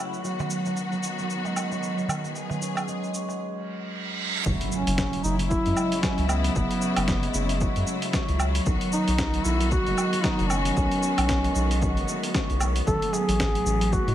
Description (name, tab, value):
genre	organic downtempo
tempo	114 BPM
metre	4/4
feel	swing 58% on 16ths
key	F# dorian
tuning	A4 = 440 Hz
part	rich studio string section	sustained chords	0.0-14.1 s	A2 to G#4	-32 LUFS	left 3 dB	sidechain pumping, low-pass filter
part	concert harp	arpeggios	0.0-14.1 s	F#3 to F#4	-30 LUFS	right 2 dB	none
part	wind-like tuned noise texture	texture	0.0-3.4 s	F#5	-41 LUFS	right 1 dB	built-in reverb
part	dusty soul sampler-style drum kit	drums	0.1-14.1 s	cabasa, hi-hat, snare drum, woodblock	-30 LUFS	right 1 dB	overdrive, small room ambience
part	darbuka	percussion	0.2-3.4, 12.9-13.9 s	none	-35 LUFS	right 3 dB	none
part	reverse cymbal and impact	sound effects	3.7-6.6 s	none	-32 LUFS	right 2 dB	none
part	round analog bass	bass	4.5-14.1 s	F#1 to A2	-26 LUFS	equal	none
part	electronic kick drum	drums	4.5-14.0 s	none	-29 LUFS	equal	overdrive, small room ambience
part	mellow duduk	melody	4.7-14.1 s	B3 to A4	-28 LUFS	left 1 dB	ping-pong delay
room	light reverb, small room reverb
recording	none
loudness	-23 LUFS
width	side -12 dB against mid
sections	0.0-4.5 A section; 4.5-14.1 B section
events	reverse cymbal 3.7-4.5; impact 4.5-6.6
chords	0.2 B; 4.5 F#m7; 8.7 B; 12.9 Asus2